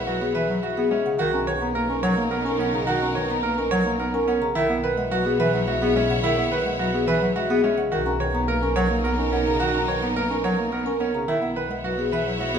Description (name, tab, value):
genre	classical, minimalist pattern music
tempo	107 BPM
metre	3/4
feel	straight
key	B major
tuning	A4 = 439 Hz
part	marimba with soft mallets	melody	0.0-12.6 s	G#4 to A#5	-25 LUFS	left 2 dB	none
part	dark bass clarinet	accompaniment	0.0-12.6 s	C#3 to C#4	-26 LUFS	equal	none
part	clear symphonic string section	sustained chords	0.0-12.6 s	D#4 to C#5	-31 LUFS	right 2 dB	none
part	rich symphonic double bass section	bass	0.0-12.6 s	B1	-32 LUFS	equal	none
part	bright grand piano	arpeggios	0.1-12.6 s	C#4 to C#5	-27 LUFS	right 4 dB	none
room	wet stone room reverb, RT60 1.3 s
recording	minimal, uncompressed stereo recording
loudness	-20 LUFS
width	side -7 dB against mid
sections	0.0-12.6 A section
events	none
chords	0.0 C#m7/B; 1.2 Bmaj7; 4.6 C#m9/B; 7.9 Bmaj7; 11.3 C#m9/B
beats	0.07 0.63 | 1.19 1.75 2.31 | 2.88 3.44 4.00 | 4.56 5.12 5.68 | 6.24 6.80 7.36 | 7.92 8.48 9.04 | 9.61 10.17 10.73 | 11.29 11.85 12.41